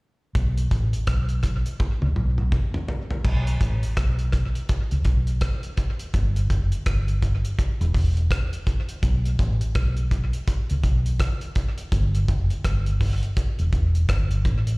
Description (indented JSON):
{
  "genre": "roots reggae",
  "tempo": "83 BPM",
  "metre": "4/4",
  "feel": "swing 61% on 16ths",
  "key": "unclear",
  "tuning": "A4 = 440 Hz",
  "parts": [
    { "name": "vintage muted fingered electric bass", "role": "bass", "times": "0.4-14.8 s", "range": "E1 to C#2", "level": "-22 LUFS", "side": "equal", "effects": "none" },
    { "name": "cloth-damped thuddy drum kit", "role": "drums", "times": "0.4-14.8 s", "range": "crash cymbal, hi-hat, kick drum, rim click, toms", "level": "-25 LUFS", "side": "equal", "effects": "none" }
  ],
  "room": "little or no reverb",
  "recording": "live gig heard through the venue's PA, recital hall reverb",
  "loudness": "-21 LUFS",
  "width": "side -28 dB against mid",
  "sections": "0.4-3.2 A section; 3.2-14.8 B section",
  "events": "drum fill 1.8-3.2",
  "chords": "none"
}